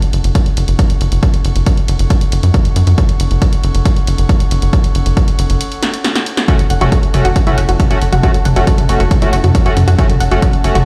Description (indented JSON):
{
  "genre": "driving peak-time techno",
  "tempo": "137 BPM",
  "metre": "4/4",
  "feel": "straight",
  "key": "F# minor",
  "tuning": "A4 = 441 Hz",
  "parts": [
    { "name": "punchy analog drum machine", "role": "drums", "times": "0.0-10.8 s", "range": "hi-hat, snare drum, toms", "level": "-23 LUFS", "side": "equal", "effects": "none" },
    { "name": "airy breathy pad", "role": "texture", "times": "0.0-10.8 s", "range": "C#4 to C#6", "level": "-28 LUFS", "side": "equal", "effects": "chorus, sidechain pumping" },
    { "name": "tight sequencer bass", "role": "bass", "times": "0.1-10.8 s", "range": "F#1 to F#2", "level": "-15 LUFS", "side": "equal", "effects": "sidechain pumping" },
    { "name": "electronic kick drum", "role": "drums", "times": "0.4-10.5 s", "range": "none", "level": "-15 LUFS", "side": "equal", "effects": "none" },
    { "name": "analog pluck", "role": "riff", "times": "6.5-10.8 s", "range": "E4 to F#5", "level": "-23 LUFS", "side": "equal", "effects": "chorus, tube saturation, sidechain pumping, tape echo" },
    { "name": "sync-sweep polysynth", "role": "stabs", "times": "6.5-10.8 s", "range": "A3 to F#4", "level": "-21 LUFS", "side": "equal", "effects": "chorus, sidechain pumping, tape echo" }
  ],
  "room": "digital ambience",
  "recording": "played on a big sound system in a bare room, stone room reverb",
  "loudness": "-13 LUFS",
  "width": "mono",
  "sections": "0.0-10.8 A section",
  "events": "fade-in on analog synth pad 0.0-10.8; break 5.6-6.5; drum fill 5.8-6.5",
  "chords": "0.0 F#m"
}